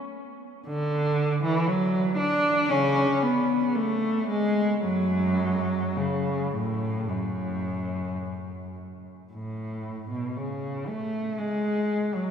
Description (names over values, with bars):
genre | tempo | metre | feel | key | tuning
classical, baroque-style suite movement for unaccompanied cello | 52-60 BPM | 4/4 | rubato | F# minor | A4 = 441 Hz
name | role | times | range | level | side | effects
warm cello | solo | 0.7-12.3 s | F#2 to D4 | -24 LUFS | equal | none
room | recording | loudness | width
wet cathedral reverb, RT60 4.7 s | minimal, uncompressed stereo recording | -24 LUFS | side -7 dB against mid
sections
0.0-9.3 A section; 9.3-12.3 B section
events
none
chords
none